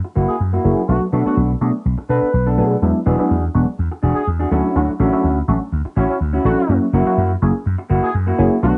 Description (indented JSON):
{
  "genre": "house",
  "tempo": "124 BPM",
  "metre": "4/4",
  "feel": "straight",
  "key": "unclear",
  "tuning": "A4 = 441 Hz",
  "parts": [
    { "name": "semi-hollow electric guitar", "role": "riff", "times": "0.0-8.6 s", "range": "A#3 to A4", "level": "-23 LUFS", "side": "equal", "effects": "low-pass filter" },
    { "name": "slap bass", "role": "bass", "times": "0.2-8.8 s", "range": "E1 to B2", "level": "-20 LUFS", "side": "equal", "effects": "low-pass filter" },
    { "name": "bright horn section", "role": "melody", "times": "0.3-8.8 s", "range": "C#4 to B4", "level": "-27 LUFS", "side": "equal", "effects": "low-pass filter, cassette tape" },
    { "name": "funky polysynth comp", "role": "accompaniment", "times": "0.6-8.8 s", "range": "F#3 to G#4", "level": "-20 LUFS", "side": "equal", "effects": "chorus, phaser, low-pass filter" }
  ],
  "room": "moderate studio reverb, RT60 0.6 s",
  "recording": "home recording on cassette, nothing above 10.7 kHz",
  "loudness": "-17 LUFS",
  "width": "mono",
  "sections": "0.0-8.8 A section",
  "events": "none",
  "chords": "0.0 F#7; 0.9 Bm7; 2.8 E9; 4.5 Dmaj9; 6.7 F#7",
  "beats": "0.40 | 0.89 1.37 1.86 2.34 | 2.82 3.31 3.79 4.28 | 4.76 5.24 5.73 6.21 | 6.70 7.18 7.66 8.15 | 8.63"
}